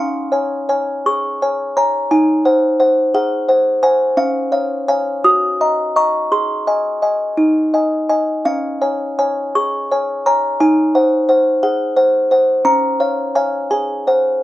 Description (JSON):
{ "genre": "classical, lullaby for music box", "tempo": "57 BPM (dotted quarters)", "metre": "6/8", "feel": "uneven beats, rubato", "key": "Db major", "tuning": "A4 = 441 Hz", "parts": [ { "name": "music box", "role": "solo", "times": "0.0-14.4 s", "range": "Db4 to Eb6", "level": "-14 LUFS", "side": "equal", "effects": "none" } ], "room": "light reverb", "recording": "none", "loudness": "-14 LUFS", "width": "side -15 dB against mid", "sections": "0.0-14.4 A section", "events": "none", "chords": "0.0 Db; 2.1 Ab7/Eb; 4.2 Db; 5.3 Ebm/Gb; 6.3 Ab; 8.5 Db; 10.6 Ab7/Eb; 12.7 Db; 13.7 Ab7" }